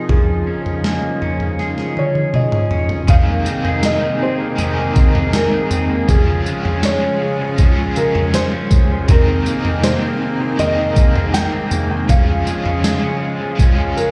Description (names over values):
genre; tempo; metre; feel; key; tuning
dream pop; 80 BPM; 4/4; straight; Ab major; A4 = 438 Hz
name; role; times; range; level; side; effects
felt-muted upright piano; melody; 0.0-14.1 s; Ab4 to G5; -25 LUFS; equal; digital delay
lush unison pad; sustained chords; 0.0-14.1 s; C3 to Ab4; -25 LUFS; equal; chorus
electric guitar at the edge of break-up; arpeggios; 0.0-14.1 s; Eb3 to Ab4; -26 LUFS; equal; subtle chorus, digital delay
gated 80s digital drum machine; drums; 0.1-14.1 s; kick drum, snare drum, tambourine, toms; -18 LUFS; equal; gated reverb, gated reverb snare
raw garage guitar; accompaniment; 3.1-14.1 s; Db3 to Bb4; -26 LUFS; equal; overdrive, tremolo, ensemble chorus
room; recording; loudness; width
moderate concert hall reverb, RT60 2.2 s; played on a big sound system in a bare room, large studio reverb; -16 LUFS; mono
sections
0.0-3.1 A section; 3.1-14.1 B section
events
drum fill 1.6-3.1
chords
0.1 Eb9sus4; 3.1 Abadd9; 6.1 Db; 9.1 Abadd9; 12.1 Db